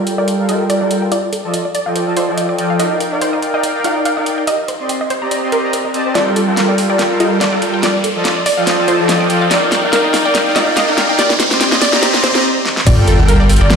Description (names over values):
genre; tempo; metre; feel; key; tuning
future bass; 143 BPM; 4/4; swing 55% on 16ths, half-time; G minor; A4 = 440 Hz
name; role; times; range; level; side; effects
wide unison pluck; melody; 0.0-13.8 s; Bb4 to F5; -20 LUFS; right 1 dB; sidechain pumping, digital delay
wide unison pluck; arpeggios; 0.0-13.8 s; F4 to Bb5; -23 LUFS; moving between left 4 dB and right 3 dB; auto-pan, sidechain pumping, ping-pong delay
soft supersaw; riff; 0.0-13.8 s; F3 to C6; -15 LUFS; equal; sidechain pumping, low-pass filter
riser and sub drop; sound effects; 0.0-13.8 s; none; -21 LUFS; equal; none
pop drum kit; drums; 0.1-13.8 s; crash cymbal, hi-hat, snare drum; -19 LUFS; equal; high-pass filter on snare, high-pass filter on hats, high-pass filter on cymbals
airy dreamy lead; arpeggios; 12.9-13.8 s; G5; -28 LUFS; left 1 dB; none
saturated sub bass; bass; 12.9-13.8 s; G1; -11 LUFS; equal; sidechain pumping
electronic kick drum; drums; 12.9-13.0 s; none; -14 LUFS; equal; none
room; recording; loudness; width
wet digital room reverb, RT60 1.3 s, digital ambience; played on a big sound system in a bare room, large studio reverb; -12 LUFS; side -6 dB against mid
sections
0.0-12.9 A section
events
build-up 0.0-12.9; riser 0.0-12.4; filter sweep on supersaw synth 0.0-12.9; filter sweep on synth pluck 0.0-12.9; filter sweep on synth arpeggio sound 0.0-12.9; drum fill 6.2-12.4, 12.7; break 12.4-12.9; impact 12.9-13.8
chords
0.0 Gm9; 1.1 F13; 2.8 Ebmaj9; 4.5 Cm9; 6.2 Gm9; 7.8 F13; 9.5 Ebmaj9; 11.2 Cm9; 12.9 Gm9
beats
0.28 0.70 | 1.12 1.54 1.96 2.38 | 2.80 3.21 3.63 4.05 | 4.47 4.89 5.31 5.73 | 6.15 6.57 6.99 7.41 | 7.83 8.25 8.67 9.09 | 9.51 9.93 10.35 10.77 | 11.19 11.61 12.03 12.45 | 12.87 13.29 13.71